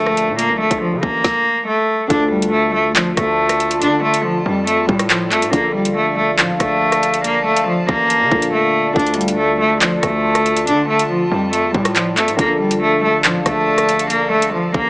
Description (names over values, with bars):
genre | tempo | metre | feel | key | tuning
hip hop, drill | 140 BPM | 4/4 | half-time | D minor | A4 = 440 Hz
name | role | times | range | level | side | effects
rich cello | melody | 0.0-14.9 s | F3 to D4 | -15 LUFS | equal | low-pass filter, digital delay
felt-muted upright piano | accompaniment | 0.0-14.9 s | Bb2 to A4 | -24 LUFS | left 1 dB | low-pass filter
warbly tape-like pad | sustained chords | 0.0-14.9 s | A3 to A5 | -24 LUFS | equal | chorus, built-in reverb, phaser
distorted 808-style bass | bass | 0.0-14.9 s | A1 to D3 | -26 LUFS | equal | distortion
drill drum kit | drums | 0.1-14.8 s | handclaps, hi-hat, kick drum, rim click, snare drum | -18 LUFS | equal | none
room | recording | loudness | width
light reverb | small speaker sound | -13 LUFS | side -24 dB against mid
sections
0.0-2.1 A section; 2.1-14.9 B section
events
drums muted 8.5-9.0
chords
0.0 Bbmaj7; 2.1 Dm; 5.5 Bbmaj7; 9.0 Dm; 12.4 Bbmaj7